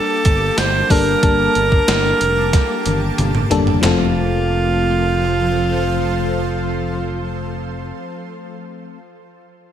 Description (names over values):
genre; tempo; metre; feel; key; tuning
1980s-style pop; 92 BPM; 4/4; straight; F major; A4 = 440 Hz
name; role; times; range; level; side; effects
bright alto saxophone; melody; 0.0-7.2 s; F4 to C5; -19 LUFS; right 2 dB; digital delay
FM electric piano; accompaniment; 0.0-9.0 s; F3 to A5; -22 LUFS; left 6 dB; chorus
shimmering ambient pad; sustained chords; 0.0-7.2 s; F3 to D6; -26 LUFS; right 1 dB; chorus, built-in reverb
gated 80s digital drum machine; drums; 0.2-4.0 s; handclaps, hi-hat, kick drum, snare drum, tambourine, toms; -18 LUFS; right 1 dB; gated reverb, gated reverb snare
fingered electric bass; bass; 0.3-7.9 s; F1 to G1; -22 LUFS; equal; none
room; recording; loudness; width
light reverb; none; -14 LUFS; side -10 dB against mid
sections
0.0-3.8 A section; 3.8-6.4 B section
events
drum fill 2.5-3.8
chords
0.0 Gmadd9; 3.8 F